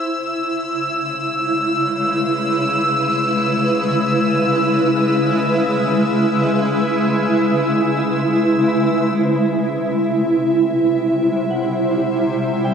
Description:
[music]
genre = ambient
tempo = free time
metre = none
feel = none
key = unclear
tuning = A4 = 442 Hz
[part]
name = granular cloud pad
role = sustained chords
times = 0.0-12.7 s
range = C3 to C5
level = -16 LUFS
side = equal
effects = built-in reverb
[part]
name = rich chamber violin section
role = texture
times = 0.0-12.7 s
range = E5 to E6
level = -23 LUFS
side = left 1 dB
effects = none
[part]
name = soft synth bell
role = arpeggios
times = 9.2-12.7 s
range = C5 to G5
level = -35 LUFS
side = equal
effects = none
[sound]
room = wet cathedral reverb, RT60 6.1 s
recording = in a vast, echoing space, cassette tape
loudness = -15 LUFS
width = side -7 dB against mid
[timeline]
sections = 0.0-9.2 A section; 9.2-12.7 A section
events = fade-in on ambient pad 0.0-9.2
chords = 0.0 C#m7; 9.2 C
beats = free time

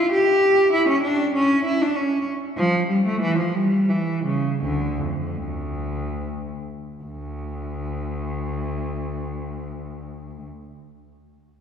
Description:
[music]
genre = classical, baroque-style suite movement for unaccompanied cello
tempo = 68-99 BPM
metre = 3/4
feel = rubato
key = D minor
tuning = A4 = 440 Hz
[part]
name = warm cello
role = solo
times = 0.0-10.5 s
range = D2 to G4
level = -21 LUFS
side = equal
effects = none
[sound]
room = wet church reverb, RT60 2.9 s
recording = heard from further back in the room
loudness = -20 LUFS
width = side -8 dB against mid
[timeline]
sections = 0.0-7.0 A section; 7.0-11.6 B section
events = slowing down 1.6-7.0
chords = none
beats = 0.11 | 0.72 1.34 1.95 | 2.57 3.22 3.90 | 4.62 5.38 6.19 | 7.04 7.90 8.77 | 9.63

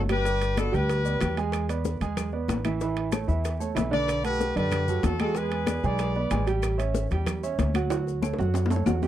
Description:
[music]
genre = latin, salsa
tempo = 188 BPM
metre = 4/4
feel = straight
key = unclear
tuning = A4 = 435 Hz
[part]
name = brilliant horn section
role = melody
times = 0.0-1.4, 3.9-6.5 s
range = F#4 to D5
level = -28 LUFS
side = left 2 dB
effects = none
[part]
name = clear grand piano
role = accompaniment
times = 0.0-9.1 s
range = D3 to G#5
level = -29 LUFS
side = right 6 dB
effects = none
[part]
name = upright bass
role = bass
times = 0.0-9.1 s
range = G1 to F#2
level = -28 LUFS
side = left 1 dB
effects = none
[part]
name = bongos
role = percussion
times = 0.1-8.9 s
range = none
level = -36 LUFS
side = left 6 dB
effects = none
[part]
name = claves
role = percussion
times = 0.1-9.0 s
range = none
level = -43 LUFS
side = left 18 dB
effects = none
[part]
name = congas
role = percussion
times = 0.1-9.1 s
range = none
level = -32 LUFS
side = left 4 dB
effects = none
[part]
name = maracas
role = percussion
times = 0.1-9.1 s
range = none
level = -46 LUFS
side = left 18 dB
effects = none
[part]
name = timbales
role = percussion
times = 0.1-9.1 s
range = none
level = -36 LUFS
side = right 8 dB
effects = none
[sound]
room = little or no reverb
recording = dry, close 1970s-style studio recording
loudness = -24 LUFS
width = side -12 dB against mid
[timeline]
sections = 0.0-9.1 A section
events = drum fill 7.9-9.1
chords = 0.3 G; 1.5 E7; 2.8 A; 4.1 Bm7; 5.4 E7; 6.6 A7; 7.9 Dmaj7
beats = | 0.26 0.58 0.90 1.22 | 1.54 1.85 2.17 2.49 | 2.81 3.13 3.45 3.77 | 4.09 4.41 4.73 5.04 | 5.36 5.68 6.00 6.32 | 6.64 6.96 7.28 7.59 | 7.91 8.23 8.55 8.87

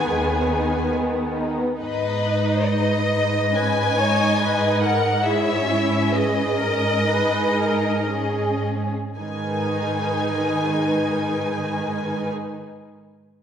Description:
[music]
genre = classical, slow romantic movement for string orchestra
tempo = 53-72 BPM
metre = 4/4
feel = rubato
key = G# minor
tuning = A4 = 440 Hz
[part]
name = rich symphonic violin section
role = melody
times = 0.0-12.3 s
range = B4 to G#5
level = -25 LUFS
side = left 3 dB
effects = none
[part]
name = warm symphonic violin section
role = second line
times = 0.0-12.3 s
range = G#3 to D#5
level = -25 LUFS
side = left 2 dB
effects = none
[part]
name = warm symphonic viola section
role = accompaniment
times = 0.0-12.3 s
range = D#3 to C#5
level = -25 LUFS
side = right 1 dB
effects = none
[part]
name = rich symphonic cello section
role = bass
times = 0.0-12.3 s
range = G#2 to B3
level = -26 LUFS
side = right 3 dB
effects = none
[part]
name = rich studio double bass section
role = bass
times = 0.1-0.8 s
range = D#2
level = -30 LUFS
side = right 1 dB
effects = none
[sound]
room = wet scoring stage reverb, RT60 1.6 s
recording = none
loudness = -19 LUFS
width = side -8 dB against mid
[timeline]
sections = 0.0-1.8 A section; 1.8-9.2 B section; 9.2-13.4 C section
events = slowing down 0.1-9.2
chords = 0.0 G#m; 5.2 C#m/G#; 9.2 G#m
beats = 0.07 0.93 | 1.81 2.67 3.55 4.39 | 5.25 6.13 7.08 8.09 | 9.18 10.24 11.30

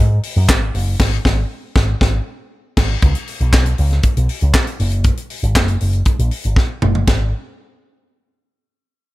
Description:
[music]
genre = disco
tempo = 118 BPM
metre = 4/4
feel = straight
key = unclear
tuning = A4 = 441 Hz
[part]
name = picked electric bass with an envelope filter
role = bass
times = 0.0-7.3 s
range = F#1 to G#2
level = -16 LUFS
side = equal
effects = none
[part]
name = tight funk drum kit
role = drums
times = 0.2-7.2 s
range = crash cymbal, handclaps, hi-hat, kick drum, ride cymbal, snare drum, toms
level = -16 LUFS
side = equal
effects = none
[sound]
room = little or no reverb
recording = none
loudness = -14 LUFS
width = side -18 dB against mid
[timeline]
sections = 0.0-3.0 A section; 3.0-7.1 B section; 7.1-9.1 C section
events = band accent 1.0-3.0; drum fill 6.6-7.1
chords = none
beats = 0.49 | 1.00 1.50 2.01 2.52 | 3.02 3.53 4.04 4.54 | 5.05 5.56 6.07 6.57 | 7.08

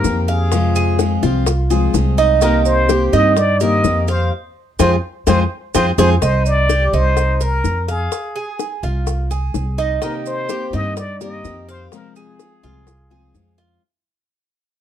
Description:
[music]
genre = latin, Cuban son and guajira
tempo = 126 BPM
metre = 4/4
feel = straight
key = C minor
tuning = A4 = 440 Hz
[part]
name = trumpet with plunger mute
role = melody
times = 0.0-13.6 s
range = Ab4 to Eb5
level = -21 LUFS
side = left 2 dB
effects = plate reverb
[part]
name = picked steel-string acoustic guitar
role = accompaniment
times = 0.0-6.1, 10.0-13.8 s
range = C3 to G4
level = -21 LUFS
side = left 6 dB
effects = none
[part]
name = Cuban tres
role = arpeggios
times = 0.0-13.8 s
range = C4 to F5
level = -21 LUFS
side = right 6 dB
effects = none
[part]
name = upright bass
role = bass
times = 0.0-13.8 s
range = C2 to G2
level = -18 LUFS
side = right 1 dB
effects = none
[part]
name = bongos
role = percussion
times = 0.0-13.8 s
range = none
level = -23 LUFS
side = left 11 dB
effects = none
[part]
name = maracas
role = percussion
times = 0.0-13.8 s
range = none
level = -31 LUFS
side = right 10 dB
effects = none
[sound]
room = light reverb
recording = dark, warm production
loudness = -14 LUFS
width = side -10 dB against mid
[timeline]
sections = 0.0-6.2 A section; 6.2-13.8 B section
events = band accent 4.3-6.2; drum fill 6.0; fade-out 6.2-13.8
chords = 0.0 Cm7; 0.5 Fm; 2.4 Cm7; 4.3 Fm; 6.2 Cm7; 8.1 Fm; 10.0 Cm7; 11.9 Fm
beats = 0.04 | 0.52 0.99 1.47 1.94 | 2.42 2.89 3.37 3.85 | 4.32 4.80 5.27 5.75 | 6.22 6.70 7.17 7.65 | 8.12 8.60 9.07 9.55 | 10.02 10.50 10.97 11.45 | 11.92 12.40 12.87 13.35

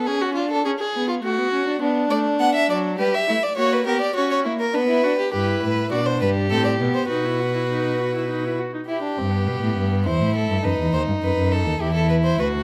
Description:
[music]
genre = classical, baroque-style fugue for string quartet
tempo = 102 BPM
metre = 3/4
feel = straight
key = B minor, E minor from 5.3 s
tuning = A4 = 440 Hz
[part]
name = rich violin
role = second line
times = 0.0-12.6 s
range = B3 to B4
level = -27 LUFS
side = equal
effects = none
[part]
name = rich viola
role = accompaniment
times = 0.0-8.8 s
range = F#3 to F#4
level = -28 LUFS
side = equal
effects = none
[part]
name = warm violin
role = melody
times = 2.1-12.5 s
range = G4 to F#5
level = -26 LUFS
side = equal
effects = none
[part]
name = rich cello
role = bass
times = 5.3-12.6 s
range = D2 to B2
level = -25 LUFS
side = equal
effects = none
[sound]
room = light reverb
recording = close, detailed microphones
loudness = -21 LUFS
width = mono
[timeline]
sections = 0.0-5.3 A section; 5.3-8.9 B section; 8.9-12.6 C section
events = none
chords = 0.1 C#7(no3); 1.2 F#m/A; 1.8 Bm; 3.0 Em/G; 3.6 F#/A#; 4.7 Bm; 5.3 G; 6.5 Am; 7.1 B; 8.9 Em (rootless); 10.1 Am/E; 10.6 B7; 11.8 Em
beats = | 0.07 0.65 1.23 | 1.81 2.40 2.98 | 3.57 4.15 4.74 | 5.33 5.92 6.51 | 7.10 7.70 8.29 | 8.89 9.48 10.06 | 10.65 11.23 11.81 | 12.39

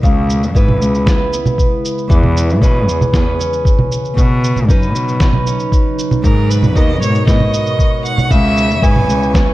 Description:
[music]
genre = folktronica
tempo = 116 BPM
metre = 4/4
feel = straight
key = unclear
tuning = A4 = 440 Hz
[part]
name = warbly tape-like pad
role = sustained chords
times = 0.0-9.5 s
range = B2 to B4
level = -23 LUFS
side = right 1 dB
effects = chorus, built-in reverb
[part]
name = picked old ladder-braced acoustic guitar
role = arpeggios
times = 0.0-9.5 s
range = G#2 to B4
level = -20 LUFS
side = right 1 dB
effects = ping-pong delay
[part]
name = warm cello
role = bass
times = 0.0-9.3 s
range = C#2 to B2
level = -16 LUFS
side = equal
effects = none
[part]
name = electronic cabasa, congas and snare drum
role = drums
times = 0.0-9.5 s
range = none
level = -19 LUFS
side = right 1 dB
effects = none
[part]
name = electronic kick drum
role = drums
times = 0.0-9.4 s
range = none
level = -13 LUFS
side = equal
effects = none
[part]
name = rich violin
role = melody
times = 6.2-9.3 s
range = A#4 to G#5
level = -18 LUFS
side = equal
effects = ping-pong delay
[part]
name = flickering grainy texture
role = texture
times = 6.4-9.5 s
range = C#5 to C#6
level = -29 LUFS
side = left 1 dB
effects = built-in reverb
[sound]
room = light reverb, digital ambience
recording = dark, warm production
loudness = -11 LUFS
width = side -16 dB against mid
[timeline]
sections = 0.0-9.5 A section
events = none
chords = 0.0 C#m7; 2.1 E6; 4.2 Badd9; 6.2 G#madd9; 8.3 C#m7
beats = | 0.04 0.55 1.07 1.59 | 2.10 2.62 3.14 3.66 | 4.17 4.69 5.21 5.72 | 6.24 6.76 7.28 7.79 | 8.31 8.83 9.35

